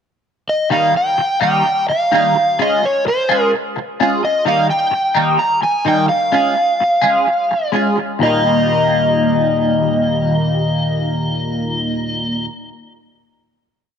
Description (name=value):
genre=rock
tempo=128 BPM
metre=4/4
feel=straight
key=Eb mixolydian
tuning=A4 = 440 Hz
part: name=overdriven slide guitar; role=melody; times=0.5-12.5 s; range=C5 to Bb5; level=-16 LUFS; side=equal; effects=tape echo
part: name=clean electric guitar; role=riff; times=0.7-12.5 s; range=Eb2 to Ab4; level=-17 LUFS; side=equal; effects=phaser, double-tracked left and right, tape echo
room=light reverb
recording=echo-heavy mix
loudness=-13 LUFS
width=side -7 dB against mid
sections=0.0-0.7 pickup bar; 0.7-8.2 groove; 8.2-12.0 final chord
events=none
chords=0.0 N.C.; 0.7 Eb; 2.6 Db; 4.5 Eb; 6.3 Db; 8.2 Eb